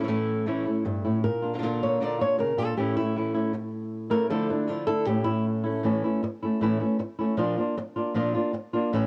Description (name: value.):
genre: flamenco.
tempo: 156 BPM.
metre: 4/4.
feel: straight.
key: A phrygian dominant.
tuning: A4 = 442 Hz.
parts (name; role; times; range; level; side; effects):
flamenco guitar; melody; 0.0-9.1 s; G2 to D5; -28 LUFS; equal; cassette tape.
flamenco guitar; stabs; 0.0-5.8 s; A2 to F4; -31 LUFS; equal; cassette tape.
room: light reverb, small room ambience.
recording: home recording on cassette.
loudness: -27 LUFS.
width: mono.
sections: 0.0-5.8 A section; 5.8-9.1 B section.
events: nylon-string guitar solo 0.0-5.8.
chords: 0.0 A; 1.2 Bb; 2.8 A; 4.3 Dmadd9; 5.1 A; 7.4 Bb.